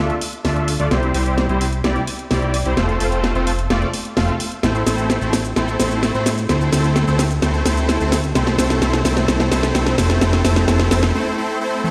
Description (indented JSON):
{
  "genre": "EDM, festival progressive house",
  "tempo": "129 BPM",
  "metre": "4/4",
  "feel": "straight",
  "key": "unclear",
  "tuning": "A4 = 436 Hz",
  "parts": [
    { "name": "supersaw chords", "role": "riff", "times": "0.0-11.9 s", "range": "G3 to F5", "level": "-23 LUFS", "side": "equal", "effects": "analog chorus, low-pass filter, dub echo" },
    { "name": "fat analog bass", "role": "bass", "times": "0.0-11.1 s", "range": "F1 to A2", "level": "-22 LUFS", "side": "equal", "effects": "none" },
    { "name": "house drum kit", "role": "drums", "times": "0.1-11.9 s", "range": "hi-hat, shaker, snare drum, toms", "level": "-23 LUFS", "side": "equal", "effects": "none" }
  ],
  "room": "moderate lush hall reverb, RT60 1.8 s",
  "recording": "played on a big sound system in a bare room, large studio reverb",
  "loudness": "-18 LUFS",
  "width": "mono",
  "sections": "0.0-11.9 A section",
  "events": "build-up 0.0-11.9; drum fill 0.0-11.1; break 11.1-11.9",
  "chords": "0.0 Dm; 0.9 C; 2.8 F; 4.6 Am; 6.5 D5; 8.4 F"
}